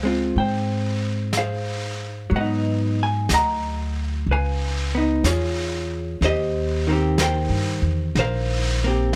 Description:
jazz ballad; 62 BPM; 4/4; swing 68% on 8ths; A4 = 441 Hz
vintage hollow-body jazz guitar; accompaniment; 0.0-9.2 s; Eb3 to Bb5; -26 LUFS; equal
upright bass; bass; 0.0-9.2 s; Bb1 to Ab2; -26 LUFS; equal
vintage brush drum kit; drums; 0.3-9.2 s; brushed snare drum, hi-hat, snare drum; -32 LUFS; equal
little or no reverb; close, detailed microphones; -23 LUFS; mono
0.0-9.2 A section
0.0 Dbmaj7; 2.3 Abm7; 4.3 Db9; 6.2 Eb6

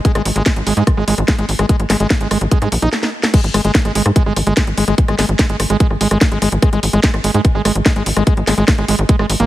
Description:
psychedelic trance; 146 BPM; 4/4; straight; A4 = 440 Hz
overdriven acid bass; riff; 0.0-9.5 s; G#3 to D#4; -19 LUFS; moving between left 4 dB and right 6 dB; distortion, auto-pan, sidechain pumping, tape echo
electronic kick drum; drums; 0.0-9.2 s; -14 LUFS; equal
garage drum kit; drums; 0.1-9.5 s; crash cymbal, hi-hat, rim click, snare drum; -19 LUFS; equal
tight sequencer bass; bass; 0.2-9.5 s; G#1 to G#2; -17 LUFS; equal
little or no reverb; heavily compressed radio sound; -12 LUFS; side -15 dB against mid
0.0-3.3 A section; 3.3-9.5 B section
drum fill 2.9-3.3; stop 2.9-3.3; drop 3.3-9.5
0.0 G#5

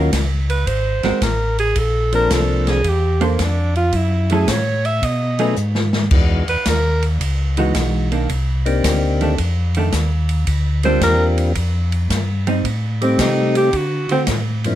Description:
soul jazz organ trio; 110 BPM; 4/4; swing 67% on 8ths; A4 = 438 Hz
percussive tonewheel organ; melody; 0.0-14.8 s; G2 to B4; -21 LUFS; left 3 dB; slow rotary speaker
vintage hollow-body jazz guitar; accompaniment; 0.0-14.3 s; D3 to C5; -20 LUFS; right 3 dB
mellow tonewheel organ; bass; 0.0-14.8 s; Ab1 to D3; -18 LUFS; equal; chorus vibrato, slow rotary speaker
open jazz drum kit; drums; 0.1-14.7 s; crash cymbal, hi-hat, kick drum, ride cymbal, snare drum; -23 LUFS; equal
clear alto saxophone; melody; 0.5-7.0, 10.8-14.2 s; Bb3 to E5; -20 LUFS; right 2 dB; plate reverb
light reverb; -15 LUFS; side -12 dB against mid
0.0-14.8 A section
alto saxophone solo 0.0-14.8; drum fill 5.6-6.1
0.0 Ebm7; 0.7 Ab9; 1.8 Bbmaj9; 3.9 F#m7; 5.0 B13; 6.1 Emaj9; 8.3 Cm9; 9.4 F6; 10.5 Bb69; 12.6 Am7b5; 13.7 D7

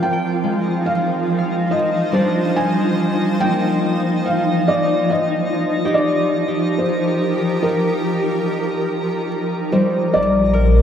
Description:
ambient; 71 BPM; 3/4; straight; A4 = 437 Hz
felt-muted upright piano; melody; 0.0-10.8 s; Bb4 to Ab5; -21 LUFS; equal; diffuse ambient delay
shimmering ambient pad; sustained chords; 0.0-10.8 s; Bb2 to G5; -20 LUFS; equal; chorus, built-in reverb
concert harp; arpeggios; 0.0-10.8 s; G3 to G5; -24 LUFS; left 2 dB; diffuse ambient delay
bowed-like drone; drone; 0.0-10.2 s; F3 to C4; -34 LUFS; right 2 dB
twinkling granular texture; texture; 0.7-10.8 s; Eb4 to Bb5; -25 LUFS; equal; built-in reverb
warm sub bass; bass; 10.2-10.8 s; Bb1; -16 LUFS; equal
wet cathedral reverb, RT60 5.2 s; in a vast, echoing space; -16 LUFS; side -8 dB against mid
0.0-10.2 A section
0.0 Bb7sus4/F; 5.1 Eb/F; 10.2 Bb7

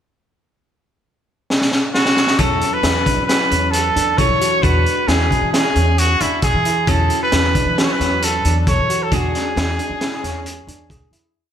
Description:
progressive instrumental, band music in an uneven meter; 134 BPM; 5/4; straight; E mixolydian; A4 = 441 Hz
crunchy breakbeat drum kit; drums; 1.5-11.2 s; hi-hat, kick drum, snare drum; -19 LUFS; equal
clear trumpet; melody; 1.9-10.9 s; E4 to C#5; -18 LUFS; equal; ping-pong delay
vintage hollow-body jazz guitar; accompaniment; 2.4-11.3 s; F#3 to F#4; -27 LUFS; equal; double-tracked left and right
dark concert grand piano; arpeggios; 2.4-11.3 s; C#4 to A4; -27 LUFS; right 3 dB; slapback echo, ping-pong delay
upright bass; bass; 2.4-11.3 s; D2 to E3; -20 LUFS; equal
moderate lush hall reverb, RT60 2.3 s; big arena sound; -14 LUFS; side -9 dB against mid
0.2-2.4 pickup bar; 2.4-11.4 A section
drum fill 1.5-2.4; fade-out 9.1-11.4
0.2 N.C.; 2.4 Dmaj9/E; 4.6 E7; 6.9 Dmaj9/E; 9.1 E7

